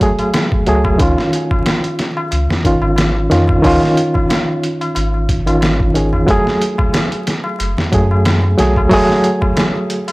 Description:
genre	trip hop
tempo	91 BPM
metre	4/4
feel	swing 55% on 16ths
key	F# dorian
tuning	A4 = 442 Hz
part	bright reed electric piano	accompaniment	0.0-10.1 s	D#3 to G#4	-15 LUFS	equal	fast tremolo, low-pass filter, tape echo
part	trip hop sampler-style drum kit	drums	0.0-10.1 s	hi-hat, kick drum, snare drum	-17 LUFS	equal	overdrive, studio reverb
part	tabla	percussion	0.2-10.1 s	none	-25 LUFS	left 2 dB	none
part	soft dub sub bass	bass	0.7-9.1 s	F#1 to F#2	-16 LUFS	equal	none
room	little or no reverb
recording	dry, gritty hardware recording, vinyl crackle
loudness	-12 LUFS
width	side -22 dB against mid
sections	0.0-10.1 A section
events	none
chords	0.0 F#madd9; 1.0 C#add9; 6.3 F#madd9

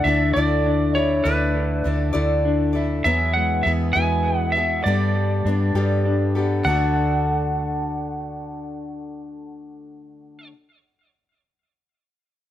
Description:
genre	folk rock and heartland rock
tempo	67 BPM (dotted quarters)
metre	6/8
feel	straight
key	D major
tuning	A4 = 442 Hz
part	lightly driven lead guitar	melody	0.0-10.5 s	B4 to G#5	-23 LUFS	right 1 dB	tape echo
part	picked acoustic archtop guitar	accompaniment	0.0-10.6 s	D3 to E5	-26 LUFS	left 2 dB	none
part	electric guitar through a small old amp	riff	0.0-10.5 s	E2 to A4	-26 LUFS	left 2 dB	spring reverb
part	hollow-body short-scale fingered electric bass	bass	0.0-10.5 s	D2 to G2	-23 LUFS	right 1 dB	none
room	moderate studio reverb, RT60 0.8 s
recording	none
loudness	-18 LUFS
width	side -12 dB against mid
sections	0.0-6.7 A section; 6.7-10.3 B section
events	none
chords	0.0 Dsus2; 3.1 Eadd9; 4.9 Gadd9; 6.7 D

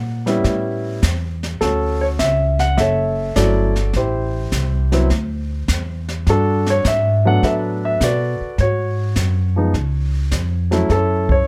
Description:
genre	jazz piano trio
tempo	103 BPM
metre	4/4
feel	swing 69% on 8ths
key	D major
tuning	A4 = 437 Hz
part	warm grand piano	melody	0.0-11.5 s	F3 to F#5	-21 LUFS	equal	none
part	upright bass	bass	0.0-11.5 s	F#1 to B2	-22 LUFS	equal	none
part	jazz brush drum kit	drums	0.3-11.5 s	brushed snare drum, hi-hat, kick drum, snare drum	-26 LUFS	equal	none
room	little or no reverb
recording	close, detailed microphones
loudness	-18 LUFS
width	mono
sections	0.0-1.6 A section; 1.6-11.5 B section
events	none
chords	0.4 A7; 1.6 Dmaj7; 3.9 Am7; 5.1 Dsus2; 6.3 Gmaj9; 8.6 G#7(no3); 9.7 C#; 10.9 F#m7

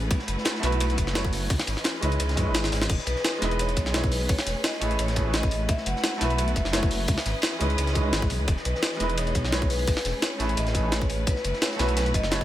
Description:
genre	liquid drum and bass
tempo	172 BPM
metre	4/4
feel	swing 54% on 16ths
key	E major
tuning	A4 = 440 Hz
part	clear baby grand piano	accompaniment	0.0-12.4 s	G#3 to C#5	-31 LUFS	right 2 dB	digital delay
part	rich studio string section	sustained chords	0.0-12.4 s	E3 to D#6	-34 LUFS	equal	sidechain pumping
part	swelling detuned saw bass	bass	0.0-12.4 s	E1 to F#2	-27 LUFS	equal	none
part	crunchy breakbeat drum kit	drums	0.1-12.4 s	hi-hat, ride cymbal, snare drum	-34 LUFS	equal	high-pass filter on cymbals, small room ambience, high-pass filter on hats, high-pass filter on snare, high-pass filter on room
part	electronic kick drum	drums	0.1-12.4 s	none	-26 LUFS	equal	small room ambience
part	jungle sampler-style drum kit	drums	0.1-12.4 s	crash cymbal, hi-hat, snare drum	-29 LUFS	left 1 dB	small room ambience
part	vibraphone with medium mallets	melody	3.1-12.4 s	B4 to F#5	-33 LUFS	left 1 dB	tape echo
room	light reverb, studio reverb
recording	none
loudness	-23 LUFS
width	side -13 dB against mid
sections	0.0-12.4 A section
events	kick drops out 2.5-2.9; drum fill 2.6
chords	0.1 B7sus4; 1.5 C#m9; 2.9 Emaj7; 4.3 Amaj9; 5.7 B7sus4; 7.1 C#m9; 8.5 Emaj7; 9.9 Amaj9; 11.3 B7sus4

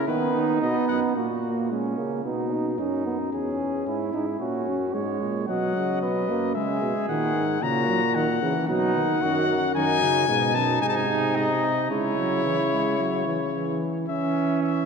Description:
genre	classical, imitative canzona for brass ensemble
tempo	111 BPM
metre	4/4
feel	straight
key	C# minor from 9.8 s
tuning	A4 = 440 Hz
part	warm trumpet	melody	0.0-1.0, 5.5-14.9 s	B4 to A#5	-27 LUFS	left 8 dB	none
part	dark trumpet	second line	0.0-14.9 s	C#4 to D#5	-28 LUFS	right 4 dB	none
part	warm bass trombone	bass	0.0-13.8 s	E2 to D#3	-28 LUFS	equal	none
part	warm trombone	accompaniment	0.1-14.9 s	B2 to D#4	-28 LUFS	right 1 dB	none
room	wet church reverb, RT60 3.3 s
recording	none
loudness	-22 LUFS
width	side -5 dB against mid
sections	0.0-1.2 A section; 1.2-14.1 B section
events	none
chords	0.1 B/D#; 1.2 F#/A#; 2.2 B; 3.3 C#m/E; 4.4 F#; 5.5 B; 6.6 C#m; 7.6 F#/A#; 8.7 B; 9.8 D#dim/F#; 10.8 G#; 11.9 C#m; 14.1 C#m/E

